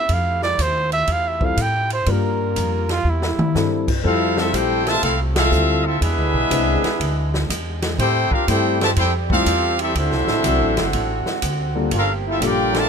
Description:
jazz, big band swing; 122 BPM; 4/4; swing 67% on 8ths; F major; A4 = 440 Hz
breathy trumpet; melody; 0.0-4.0 s; E4 to G5; -22 LUFS; right 3 dB
bright trombone section; sustained chords; 0.0-12.9 s; C3 to G4; -30 LUFS; right 2 dB
upright bass; bass; 0.1-12.9 s; F#1 to A2; -22 LUFS; equal
swinging big-band drum kit; drums; 0.1-12.8 s; crash cymbal, hi-hat, kick drum, ride cymbal, snare drum, toms; -26 LUFS; equal
dark baby grand piano; accompaniment; 1.4-12.7 s; F#3 to C5; -24 LUFS; left 6 dB
mellow trombone section; second line; 4.0-12.9 s; C3 to G4; -24 LUFS; equal
clear trumpet section; melody; 4.1-12.9 s; C4 to A5; -21 LUFS; equal
little or no reverb; close, detailed microphones; -17 LUFS; side -6 dB against mid
0.0-4.0 A section; 4.0-12.9 B section
trumpet solo 0.0-4.0; drum fill 3.1-3.5; band accent 5.3
0.1 Fmaj7; 2.1 Gm7; 3.1 C7; 4.0 Fmaj7; 6.0 E7b13; 8.0 Am7; 9.9 D7; 11.9 Gm9

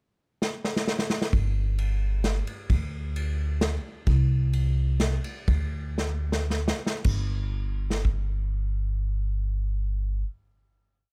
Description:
honky-tonk and classic country; 105-132 BPM; 3/4; straight; A4 = 442 Hz
unplugged drum kit; drums; 0.4-8.2 s; crash cymbal, kick drum, ride cymbal, snare drum; -30 LUFS; equal
upright bass; bass; 1.3-10.2 s; G1 to D2; -28 LUFS; equal
little or no reverb; close, detailed microphones; -27 LUFS; mono
0.0-1.3 pickup bar; 1.3-7.1 verse; 7.1-10.5 final note
drum fill 0.4-1.3, 6.0-7.1; slowing down 4.1-7.1

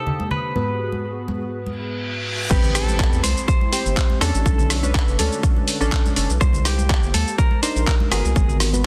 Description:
deep house; 123 BPM; 4/4; swing 53% on 16ths; A dorian; A4 = 440 Hz
direct-recorded clean electric guitar; melody; 0.0-8.6 s; G4 to C5; -31 LUFS; equal; delay
hollow soft pad; sustained chords; 0.0-8.9 s; D3 to Eb6; -37 LUFS; equal; ensemble chorus, sidechain pumping
warm analog keys; stabs; 0.0-8.9 s; G#2 to C5; -29 LUFS; equal; chorus, dub echo
congas; percussion; 0.1-8.8 s; -32 LUFS; equal; sidechain pumping on perc
reverse cymbal and impact; sound effects; 1.7-4.5 s; -32 LUFS; equal
round analog bass; bass; 2.5-8.9 s; F#1 to E2; -24 LUFS; equal; sidechain pumping
dusty soul sampler-style drum kit; drums; 2.5-8.8 s; crash cymbal, handclaps, hi-hat, rim click, shaker; -27 LUFS; equal; soft clipping on snare
electronic kick drum; drums; 2.5-8.5 s; -21 LUFS; equal; overdrive
light reverb, digital ambience; dense, heavily limited modern master; -20 LUFS; mono
0.0-2.5 A section; 2.5-8.9 B section
reverse cymbal 1.8-2.5; drop 2.5-8.9; impact 2.5-4.5
0.0 Cm7; 0.6 G#m7; 2.5 Am7; 4.5 Bm7; 6.4 Cm7; 8.4 G#m7

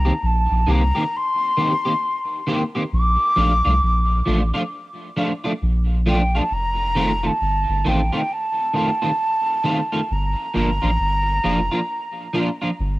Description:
roots reggae; 67 BPM; 4/4; swing 62% on 16ths; C dorian; A4 = 440 Hz
breathy mellow jazz flute; melody; 0.0-12.8 s; G5 to D6; -22 LUFS; equal; tape echo
soft dub sub bass; bass; 0.0-13.0 s; F1 to C2; -20 LUFS; equal
electric guitar at the edge of break-up; accompaniment; 0.1-12.7 s; Eb3 to G4; -24 LUFS; equal; ensemble chorus, cassette tape, tape echo
light reverb; home recording on cassette; -18 LUFS; side -19 dB against mid
0.0-13.0 A section
0.0 Cm7; 2.9 Bbmaj7; 6.5 F7; 10.1 Gm7

